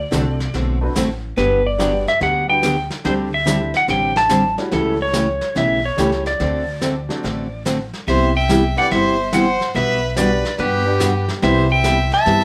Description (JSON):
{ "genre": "country, western swing", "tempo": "143 BPM", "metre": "4/4", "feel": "swing 67% on 8ths", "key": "G major", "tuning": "A4 = 440 Hz", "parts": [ { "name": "clean lap steel guitar", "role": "melody", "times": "0.0-12.4 s", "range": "A4 to A5", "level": "-22 LUFS", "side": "equal", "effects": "plate reverb" }, { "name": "upright bass", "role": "bass", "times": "0.0-12.4 s", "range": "G1 to G2", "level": "-26 LUFS", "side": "equal", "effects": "none" }, { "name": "clear upright piano", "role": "accompaniment", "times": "0.1-12.1 s", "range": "F#3 to F#5", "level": "-28 LUFS", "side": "equal", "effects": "none" }, { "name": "picked steel-string acoustic guitar", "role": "accompaniment", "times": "0.1-12.4 s", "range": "B2 to A4", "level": "-23 LUFS", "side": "equal", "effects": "none" }, { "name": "vintage brush drum kit", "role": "drums", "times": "0.1-12.4 s", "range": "brushed snare drum, hi-hat, snare drum", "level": "-31 LUFS", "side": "equal", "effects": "none" }, { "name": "clear fiddle", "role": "second line", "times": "8.1-12.4 s", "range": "G4 to E5", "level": "-24 LUFS", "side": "equal", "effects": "none" } ], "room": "moderate studio ambience, RT60 0.4 s", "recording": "none", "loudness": "-18 LUFS", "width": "mono", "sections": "0.0-12.4 A section", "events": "none", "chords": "0.0 D7; 1.4 Gmaj7; 3.0 D7sus4; 4.7 A7/C#; 6.4 D7; 8.1 Cmaj7; 9.8 Gmaj7/B; 11.4 Cmaj7" }